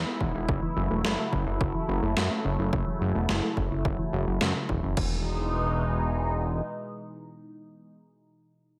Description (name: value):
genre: synthwave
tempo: 107 BPM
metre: 4/4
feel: straight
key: E major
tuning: A4 = 439 Hz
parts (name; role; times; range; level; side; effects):
- phased analog pad; sustained chords; 0.0-8.0 s; B2 to E4; -34 LUFS; equal; phaser, chorus, sidechain pumping
- fat analog bass; bass; 0.0-6.6 s; E1 to F#2; -31 LUFS; equal; none
- thumb-piano-like synth pluck; arpeggios; 0.1-5.2 s; C#3 to F#4; -36 LUFS; equal; chorus, digital delay
- electronic kick drum; drums; 0.2-5.1 s; none; -33 LUFS; equal; none
- gated 80s digital drum machine; drums; 1.0-5.1 s; crash cymbal, snare drum; -34 LUFS; equal; gated reverb, gated reverb snare
room: light reverb, digital ambience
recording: none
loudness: -28 LUFS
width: mono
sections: 0.0-5.0 A section; 5.0-7.2 B section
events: filter sweep on synth arpeggio sound 0.0-5.0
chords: 0.5 F#m7; 5.0 Emaj7